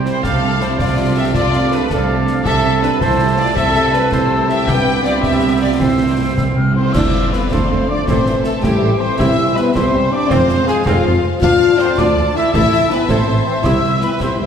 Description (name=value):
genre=cinematic, heroic adventure film score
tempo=108 BPM (dotted quarters)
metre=6/8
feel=straight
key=unclear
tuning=A4 = 442 Hz
part: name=rich symphonic violin section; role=melody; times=0.0-14.5 s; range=D4 to F5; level=-25 LUFS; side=left 5 dB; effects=none
part: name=bright concert flute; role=second line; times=0.0-14.5 s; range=F5 to F6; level=-25 LUFS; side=left 2 dB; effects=none
part: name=clear oboe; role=second line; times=0.0-6.8 s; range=G5 to C6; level=-27 LUFS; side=right 1 dB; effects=none
part: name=warm symphonic violin section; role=second line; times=0.0-14.5 s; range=A4 to A5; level=-25 LUFS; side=left 2 dB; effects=none
part: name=rich symphonic viola section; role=accompaniment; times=0.0-14.5 s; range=C4 to G5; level=-24 LUFS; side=right 1 dB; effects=none
part: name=dark French horn section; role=sustained chords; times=0.0-14.5 s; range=F3 to G4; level=-20 LUFS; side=left 3 dB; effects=none
part: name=warm trombone section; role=sustained chords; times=0.0-14.1 s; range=G2 to C4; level=-27 LUFS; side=right 2 dB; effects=none
part: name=dark trumpet section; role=stabs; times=0.0-14.5 s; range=F4 to A5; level=-22 LUFS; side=right 1 dB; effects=none
part: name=rich symphonic cello section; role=bass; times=0.0-14.5 s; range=D2 to C3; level=-21 LUFS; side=right 3 dB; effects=none
part: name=rich symphonic double bass section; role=bass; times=0.0-14.5 s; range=F1 to D2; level=-22 LUFS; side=right 2 dB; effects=none
part: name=concert snare drum, concert bass drum and clash cymbals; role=drums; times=0.1-14.4 s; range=none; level=-24 LUFS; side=equal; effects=none
part: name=timpani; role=percussion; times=0.2-0.8, 4.7-6.9, 9.2-9.7, 13.6-14.2 s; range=C3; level=-23 LUFS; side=equal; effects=none
part: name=cymbal swell, clash cymbals and concert bass drum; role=percussion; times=4.7-7.7 s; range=none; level=-24 LUFS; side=equal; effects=none
part: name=mellow tuba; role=bass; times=6.9-14.5 s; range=F1 to D2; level=-24 LUFS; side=right 1 dB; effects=none
room=wet scoring stage reverb, RT60 1.7 s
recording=heard from further back in the room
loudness=-12 LUFS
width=side -7 dB against mid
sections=0.0-7.0 A section; 7.0-14.5 B section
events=timpani fill 5.8-7.0; band accent 7.0-7.3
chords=0.2 Dm/C; 2.5 Am/C; 4.7 G/C; 5.8 C; 7.0 Dm; 8.1 Am; 9.2 C; 10.3 Fm; 11.4 Dm; 12.5 Am; 13.6 C